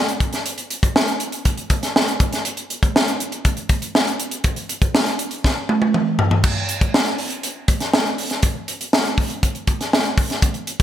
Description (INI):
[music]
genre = pop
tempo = 120 BPM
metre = 4/4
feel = straight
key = none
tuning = none
[part]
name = crisp fusion drum kit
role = drums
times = 0.1-10.8 s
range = crash cymbal, hi-hat, kick drum, snare drum, toms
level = -17 LUFS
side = equal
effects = gated reverb
[sound]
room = moderate lush hall reverb, RT60 1.8 s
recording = bright 1980s-style digital production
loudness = -18 LUFS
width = side -11 dB against mid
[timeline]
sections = 0.0-6.4 A section; 6.4-10.8 B section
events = drum fill 5.4-6.4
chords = none